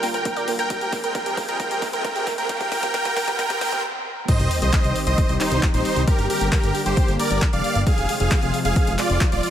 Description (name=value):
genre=uplifting trance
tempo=134 BPM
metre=4/4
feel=straight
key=C minor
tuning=A4 = 440 Hz
part: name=supersaw chords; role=melody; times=0.0-9.5 s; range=Eb4 to G5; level=-23 LUFS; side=right 1 dB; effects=sidechain pumping, dub echo
part: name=lush unison pad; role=sustained chords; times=0.0-9.5 s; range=C3 to Bb4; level=-29 LUFS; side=left 1 dB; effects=chorus, sidechain pumping
part: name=analog pluck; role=arpeggios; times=0.0-3.8 s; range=Bb3 to G5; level=-32 LUFS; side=right 2 dB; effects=chorus, sidechain pumping, tape echo
part: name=punchy analog drum machine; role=drums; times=0.0-9.5 s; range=crash cymbal, handclaps, hi-hat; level=-30 LUFS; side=left 2 dB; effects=overdrive, small room reverb
part: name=riser and sub drop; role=sound effects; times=0.3-6.1 s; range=none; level=-30 LUFS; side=equal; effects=none
part: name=electronic kick drum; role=drums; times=0.3-9.3 s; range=none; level=-22 LUFS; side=equal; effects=overdrive, small room reverb
part: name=fat analog bass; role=bass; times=4.4-9.4 s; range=Eb1 to C2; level=-23 LUFS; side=equal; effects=sidechain pumping
room=light reverb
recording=high-pass filter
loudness=-19 LUFS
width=side -10 dB against mid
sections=0.0-4.3 A section; 4.3-9.5 B section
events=build-up 0.0-4.3; drum fill 0.0-3.8; filter sweep on synth pluck 0.0-4.3; riser 0.3-3.8; stop 3.8-4.3; drop 4.3-9.5; impact 4.3-6.1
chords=0.0 Gm; 0.7 Fm; 4.3 Cm; 6.1 Gm; 7.9 Fm